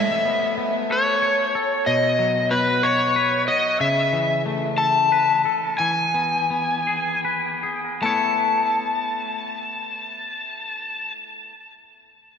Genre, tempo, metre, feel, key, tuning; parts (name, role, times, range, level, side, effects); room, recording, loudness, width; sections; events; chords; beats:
rock; 49-62 BPM (dotted quarters); 6/8; straight; A lydian; A4 = 440 Hz
overdriven slide guitar; melody; 0.0-11.1 s; B4 to A5; -20 LUFS; left 2 dB; slapback echo, digital delay
twangy electric guitar; arpeggios; 0.0-11.6 s; B2 to C#5; -25 LUFS; left 2 dB; digital delay
wet lush hall reverb, RT60 2.6 s; big arena sound; -19 LUFS; side -6 dB against mid
0.0-8.0 A section; 8.0-12.4 B section
slowing down 3.8-8.0
0.0 Aadd9; 1.9 B; 3.8 Aadd9/C#; 5.8 E; 8.0 Aadd9
0.90 | 1.86 2.83 | 3.80 4.78 | 5.79 6.87 | 8.03 9.24 | 10.46